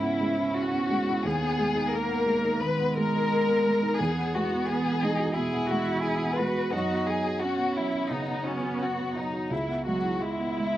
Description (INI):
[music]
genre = neoclassical piano and strings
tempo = 87 BPM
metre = 4/4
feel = rubato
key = C# dorian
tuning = A4 = 440 Hz
[part]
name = muted chamber violin section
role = melody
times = 0.0-10.8 s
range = C#4 to B4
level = -28 LUFS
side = left 3 dB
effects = slapback echo
[part]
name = muted cello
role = second line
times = 0.0-10.8 s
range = F#3 to F#4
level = -31 LUFS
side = right 4 dB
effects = none
[part]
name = felt-muted upright piano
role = accompaniment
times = 0.0-10.8 s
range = C#2 to F#4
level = -30 LUFS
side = right 2 dB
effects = none
[sound]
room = little or no reverb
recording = recorded outdoors, with no room sound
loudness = -24 LUFS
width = side -13 dB against mid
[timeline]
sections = 0.0-10.8 A section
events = none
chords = 0.0 C#m7; 1.2 G#m/D#; 4.0 Eadd9; 6.7 F#sus4; 9.5 C#m7